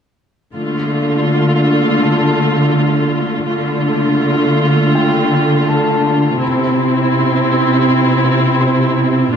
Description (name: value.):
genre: cinematic, hybrid orchestral and electronic film score.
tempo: 82 BPM.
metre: 4/4.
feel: straight.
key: D minor.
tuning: A4 = 440 Hz.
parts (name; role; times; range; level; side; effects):
rich studio viola section; accompaniment; 0.6-9.4 s; A3 to F4; -15 LUFS; equal; none.
dark symphonic cello section; bass; 0.6-9.4 s; C3 to D3; -15 LUFS; equal; none.
clear concert grand piano; texture; 2.0-9.4 s; A4 to C6; -24 LUFS; left 4 dB; ping-pong delay.
room: moderate scoring stage reverb, RT60 1.7 s.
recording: dark, warm production.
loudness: -12 LUFS.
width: side -7 dB against mid.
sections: 0.6-9.4 A section.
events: none.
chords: 0.6 Dm; 6.4 C.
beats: | 0.56 1.29 2.02 2.75 | 3.49 4.22 4.95 5.68 | 6.41 7.14 7.88 8.61 | 9.34.